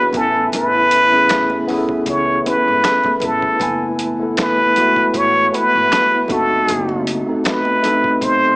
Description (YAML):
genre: R&B, neo-soul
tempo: 78 BPM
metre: 4/4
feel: swing 55% on 16ths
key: unclear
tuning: A4 = 440 Hz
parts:
  - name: trumpet with plunger mute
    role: melody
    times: 0.0-8.6 s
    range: A4 to C#5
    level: -14 LUFS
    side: equal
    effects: none
  - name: tine electric piano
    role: accompaniment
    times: 0.0-8.6 s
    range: G#3 to G#5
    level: -20 LUFS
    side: equal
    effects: medium stereo tremolo
  - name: tonewheel organ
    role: sustained chords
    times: 0.0-8.6 s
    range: A2 to E4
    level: -27 LUFS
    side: equal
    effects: slow rotary speaker, overdrive, chorus vibrato
  - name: upright bass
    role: bass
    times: 0.1-8.5 s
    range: F#1 to A2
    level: -30 LUFS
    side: equal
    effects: none
  - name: boom bap sampler-style drum kit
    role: drums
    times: 0.1-8.4 s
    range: finger snaps, hi-hat, kick drum, snare drum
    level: -23 LUFS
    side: equal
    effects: none
  - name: congas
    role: percussion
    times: 0.1-8.4 s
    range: none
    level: -32 LUFS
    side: right 1 dB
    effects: none
room: light reverb, studio reverb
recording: small speaker sound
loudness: -13 LUFS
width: side -26 dB against mid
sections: 0.0-8.6 A section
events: none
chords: 0.1 Amaj7; 3.6 F#m11; 6.3 B7b9/F#